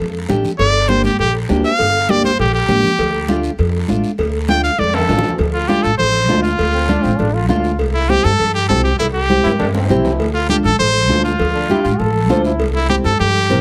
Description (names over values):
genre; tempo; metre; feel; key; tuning
latin, cumbia; 200 BPM; 4/4; straight; D minor; A4 = 440 Hz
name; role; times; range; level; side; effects
upright bass; bass; 0.0-13.6 s; G1 to G2; -21 LUFS; equal; none
guiro; percussion; 0.0-13.6 s; none; -37 LUFS; equal; none
nylon-string guitar; accompaniment; 0.3-13.6 s; A3 to C5; -20 LUFS; equal; none
congas; percussion; 0.3-13.6 s; none; -25 LUFS; equal; none
brilliant trumpet; melody; 0.6-13.6 s; E4 to G5; -19 LUFS; equal; none
cowbell and timbales; percussion; 0.6-13.4 s; none; -26 LUFS; equal; none
bright trombone; second line; 6.7-12.7 s; C4 to A4; -26 LUFS; equal; none
room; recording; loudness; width
little or no reverb; close, detailed microphones; -16 LUFS; mono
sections
0.0-5.4 A section; 5.4-13.6 B section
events
drum fill 0.0-0.6, 4.8-5.4, 9.4-10.2; trumpet solo 0.0-5.4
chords
0.0 Dm; 0.6 Gm; 3.0 Dm; 7.8 C; 10.2 Dm; 12.6 C